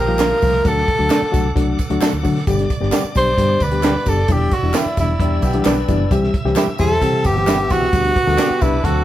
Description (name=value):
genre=uptempo 1960s-style soul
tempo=132 BPM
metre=4/4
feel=straight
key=G major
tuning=A4 = 441 Hz
part: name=breathy tenor saxophone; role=melody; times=0.0-9.0 s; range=E4 to C5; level=-18 LUFS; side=right 1 dB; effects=none
part: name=bright tonewheel organ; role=sustained chords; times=0.0-9.0 s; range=G4 to E6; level=-31 LUFS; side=equal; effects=slow rotary speaker, overdrive
part: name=electric guitar through a small old amp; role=riff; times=0.0-0.6, 5.2-9.0 s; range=G3 to C5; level=-25 LUFS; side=left 3 dB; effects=none
part: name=vintage muted fingered electric bass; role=bass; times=0.0-9.0 s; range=E1 to D3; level=-21 LUFS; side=equal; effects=none
part: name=barky reed electric piano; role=accompaniment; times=0.1-9.0 s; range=D3 to A4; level=-22 LUFS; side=left 3 dB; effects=overdrive
part: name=direct-recorded clean electric guitar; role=stabs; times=0.2-8.5 s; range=G3 to Bb4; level=-24 LUFS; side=right 6 dB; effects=none
part: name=compact cocktail drum kit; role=drums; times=0.2-9.0 s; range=hi-hat, kick drum, snare drum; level=-20 LUFS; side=right 1 dB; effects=none
part: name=handclaps and tambourine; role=percussion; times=0.2-9.0 s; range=none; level=-32 LUFS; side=left 1 dB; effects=none
room=moderate stone room reverb, RT60 1.1 s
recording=band playing live in one room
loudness=-14 LUFS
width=side -13 dB against mid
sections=0.0-9.0 A section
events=none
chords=0.0 Ebadd9; 0.7 D; 2.5 G; 4.3 Em7; 6.1 C; 7.9 G/D